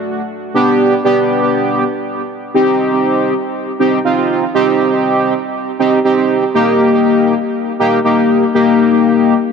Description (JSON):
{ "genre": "pop", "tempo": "120 BPM", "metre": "4/4", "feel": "straight", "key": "unclear", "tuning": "A4 = 440 Hz", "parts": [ { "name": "analog synth brass", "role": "solo", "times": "0.5-9.3 s", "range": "Bb3 to G4", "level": "-11 LUFS", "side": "equal", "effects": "chorus, tape echo" } ], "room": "wet spring reverb, RT60 1.3 s", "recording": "echo-heavy mix", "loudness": "-11 LUFS", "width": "side -6 dB against mid", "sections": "0.0-2.5 A section; 2.5-9.5 B section", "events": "none", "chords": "0.0 N.C.; 0.5 G; 2.5 Cm; 6.5 Eb" }